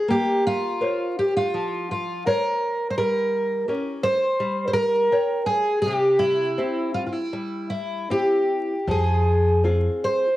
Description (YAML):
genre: fado-style ballad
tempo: 75-86 BPM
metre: 4/4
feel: rubato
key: unclear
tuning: A4 = 443 Hz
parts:
  - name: fingerpicked twelve-string acoustic guitar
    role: melody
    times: 0.0-10.4 s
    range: E4 to C5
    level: -21 LUFS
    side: equal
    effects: cassette tape
  - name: nylon-string guitar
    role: accompaniment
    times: 0.1-10.3 s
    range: C3 to G5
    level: -28 LUFS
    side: left 2 dB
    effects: cassette tape
  - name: upright bass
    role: bass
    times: 8.9-9.9 s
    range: F2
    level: -20 LUFS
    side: equal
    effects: none
room: moderate spring reverb, RT60 1.1 s, small room ambience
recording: home recording on cassette, vinyl crackle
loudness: -20 LUFS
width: side -15 dB against mid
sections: 0.0-10.4 A section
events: none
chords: 0.1 Bbmadd9; 3.0 Gdim; 5.8 C; 8.9 Fm